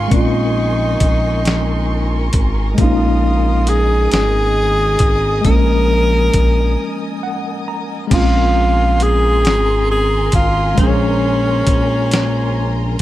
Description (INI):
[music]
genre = slow six-eight R&B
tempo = 45 BPM (dotted quarters)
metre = 6/8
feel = straight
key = Bb minor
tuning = A4 = 440 Hz
[part]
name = breathy tenor saxophone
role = melody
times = 0.0-13.0 s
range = Db4 to Bb4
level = -18 LUFS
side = equal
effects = none
[part]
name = tine electric piano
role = accompaniment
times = 0.0-13.0 s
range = F3 to Bb5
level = -21 LUFS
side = left 1 dB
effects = overdrive, fast stereo tremolo
[part]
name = warm studio string section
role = sustained chords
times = 0.0-13.0 s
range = Bb4 to Eb6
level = -26 LUFS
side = equal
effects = none
[part]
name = smooth synth bass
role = bass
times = 0.0-13.0 s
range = Ab1 to Bb1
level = -17 LUFS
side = equal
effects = none
[part]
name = dusty soul sampler-style drum kit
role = drums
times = 0.1-13.0 s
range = crash cymbal, hi-hat, kick drum, snare drum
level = -16 LUFS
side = equal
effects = none
[sound]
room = little or no reverb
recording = none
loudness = -13 LUFS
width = side -14 dB against mid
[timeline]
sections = 0.0-8.1 A section; 8.1-13.0 A section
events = break 6.8-8.1; tine electric piano fill 6.8-8.1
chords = 0.0 Bbm9; 2.8 Ab13sus4; 8.1 Bbm9